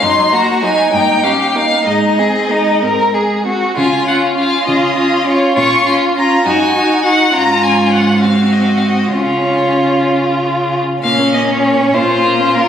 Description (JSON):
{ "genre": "quick classical-period movement for string quartet", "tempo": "62-69 BPM (dotted quarters)", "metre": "6/8", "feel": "rubato", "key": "Db major", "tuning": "A4 = 440 Hz", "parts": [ { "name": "clear violin", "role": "melody", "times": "0.0-12.7 s", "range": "Bb4 to Db6", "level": "-16 LUFS", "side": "left 3 dB", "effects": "none" }, { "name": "rich violin", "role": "second line", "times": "0.0-12.7 s", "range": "Db4 to Bb4", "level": "-14 LUFS", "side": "equal", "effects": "none" }, { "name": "rich viola", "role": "accompaniment", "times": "0.0-12.7 s", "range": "Gb3 to Eb4", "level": "-18 LUFS", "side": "right 1 dB", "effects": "none" }, { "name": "rich cello", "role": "bass", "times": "0.0-12.7 s", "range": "Gb2 to Db3", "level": "-19 LUFS", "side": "right 2 dB", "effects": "none" } ], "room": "wet scoring stage reverb, RT60 1.6 s", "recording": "recorded on a phone in the room, studio reverb", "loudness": "-11 LUFS", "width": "side -9 dB against mid", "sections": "0.0-11.0 A section; 11.0-12.7 B section", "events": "none", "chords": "0.0 Ebm/Gb; 0.9 Eb7/G; 1.9 Ab; 3.8 Db; 5.6 Bbm; 6.5 Ebm/Gb; 7.3 Db/Ab; 8.2 Ab7; 9.1 Db; 11.0 Bbm", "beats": "| 0.03 0.93 | 1.87 2.83 | 3.77 4.67 | 5.57 6.46 | 7.34 8.23 | 9.14 10.08 | 11.03 11.94" }